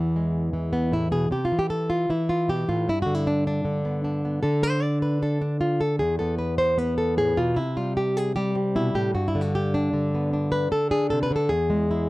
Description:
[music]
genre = flamenco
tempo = 153 BPM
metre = 4/4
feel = straight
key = unclear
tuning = A4 = 439 Hz
[part]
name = flamenco guitar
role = solo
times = 0.0-12.1 s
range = E2 to D5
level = -22 LUFS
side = equal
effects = none
[sound]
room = moderate studio reverb, RT60 0.6 s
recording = dry, close 1970s-style studio recording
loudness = -22 LUFS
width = side -19 dB against mid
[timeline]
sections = 0.0-12.1 A section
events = nylon-string guitar solo 0.0-12.1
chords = 0.0 E; 1.3 C; 2.9 G; 4.4 N.C.; 6.0 E5; 7.6 C5; 9.1 G; 10.7 Amadd11; 11.5 E

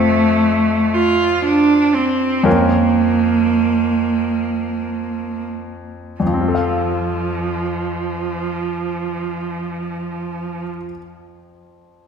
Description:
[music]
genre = classical, slow romantic movement for piano trio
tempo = 39-62 BPM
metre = 3/4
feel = rubato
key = F major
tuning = A4 = 440 Hz
[part]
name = clear cello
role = second line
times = 0.0-10.6 s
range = F3 to F4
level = -17 LUFS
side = right 3 dB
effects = none
[part]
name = bright grand piano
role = accompaniment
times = 0.0-12.1 s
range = F2 to F5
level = -21 LUFS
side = left 3 dB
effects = none
[sound]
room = wet scoring stage reverb, RT60 1.9 s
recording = recorded in a church or concert hall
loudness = -16 LUFS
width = side -6 dB against mid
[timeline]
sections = 0.0-6.2 A section; 6.2-10.3 B section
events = slowing down 0.0-6.2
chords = 0.0 F; 2.5 Bbm/F; 6.2 F

